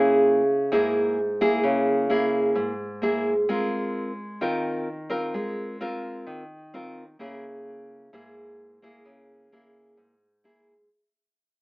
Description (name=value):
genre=bossa nova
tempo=130 BPM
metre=4/4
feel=straight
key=unclear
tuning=A4 = 440 Hz
part: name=nylon-string guitar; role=solo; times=0.0-10.9 s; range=Ab2 to Bb4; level=-23 LUFS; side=equal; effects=none
room=wet large studio reverb, RT60 0.9 s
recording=worn, warbling old tape, cassette tape, warbly pitch drift, AM radio sound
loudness=-22 LUFS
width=side -24 dB against mid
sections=0.0-10.9 A section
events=fade-out 0.0-10.9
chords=0.0 Dbm6; 3.5 Ab69; 7.2 Dbm6